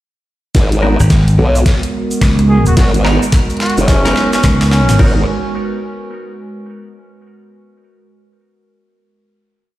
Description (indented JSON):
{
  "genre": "glitch hop",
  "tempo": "108 BPM",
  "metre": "4/4",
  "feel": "swing 63% on 16ths",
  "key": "G# minor",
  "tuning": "A4 = 440 Hz",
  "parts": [
    { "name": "warbly tape-like pad", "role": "sustained chords", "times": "0.5-5.2 s", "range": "G#3 to B4", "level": "-21 LUFS", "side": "right 3 dB", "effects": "chorus, built-in reverb, sidechain pumping" },
    { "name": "formant-sweep wobble bass", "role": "bass", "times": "0.5-5.3 s", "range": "F#1 to B1", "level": "-12 LUFS", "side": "equal", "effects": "chorus" },
    { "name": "electronic kick drum", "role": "drums", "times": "0.5-5.1 s", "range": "none", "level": "-12 LUFS", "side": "equal", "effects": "overdrive" },
    { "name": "pop drum kit", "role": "drums", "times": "0.5-5.1 s", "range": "crash cymbal, hi-hat, rim click, snare drum", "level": "-23 LUFS", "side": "equal", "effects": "overdrive, high-pass filter on snare, high-pass filter on hats, high-pass filter on cymbals, high-pass filter on room" },
    { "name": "tube shaker", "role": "percussion", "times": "0.6-5.0 s", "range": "none", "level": "-29 LUFS", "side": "right 3 dB", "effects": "none" },
    { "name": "semi-hollow electric guitar", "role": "stabs", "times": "0.8-5.2 s", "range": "B3 to A#4", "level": "-21 LUFS", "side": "equal", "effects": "phaser, sidechain pumping, low-pass filter, digital delay" },
    { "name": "slap bass", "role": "bass", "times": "1.0-5.0 s", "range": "G#1 to C#2", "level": "-11 LUFS", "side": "equal", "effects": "none" },
    { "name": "breathy trumpet", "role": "melody", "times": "2.5-5.0 s", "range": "C#4 to G#4", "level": "-20 LUFS", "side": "equal", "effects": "digital delay" }
  ],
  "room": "light reverb, digital ambience",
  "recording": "played on a big sound system in a bare room, stone room reverb",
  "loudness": "-10 LUFS",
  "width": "side -15 dB against mid",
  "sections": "0.5-5.0 build; 5.0-7.2 final chord",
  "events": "build-up 0.5-5.0; drum fill 0.5-5.0",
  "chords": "0.5 G#m9",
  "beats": "| 0.55 1.10 1.66 2.21 | 2.77 3.33 3.88 4.44 | 4.99"
}